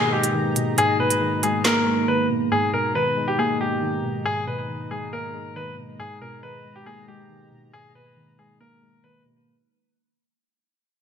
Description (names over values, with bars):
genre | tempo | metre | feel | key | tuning
hip hop, drill | 138 BPM | 4/4 | half-time | G# harmonic minor | A4 = 439 Hz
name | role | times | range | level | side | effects
bright grand piano | melody | 0.0-9.2 s | G4 to B4 | -24 LUFS | left 1 dB | low-pass filter, digital delay
muted felt-like synth keys | accompaniment | 0.0-9.5 s | G#2 to A#3 | -26 LUFS | right 1 dB | chorus, low-pass filter
sweeping resonant pad | sustained chords | 0.0-9.4 s | B2 to A#5 | -31 LUFS | left 2 dB | chorus
drill drum kit | drums | 0.2-1.8 s | handclaps, hi-hat, snare drum | -24 LUFS | right 2 dB | gated reverb
room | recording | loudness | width
moderate plate reverb, RT60 1.7 s, digital ambience | bright 1980s-style digital production | -20 LUFS | side -7 dB against mid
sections
0.0-9.5 A section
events
break 0.0-2.5; fade-out 0.0-9.5; silent gap 2.1-2.5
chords
0.0 G#madd9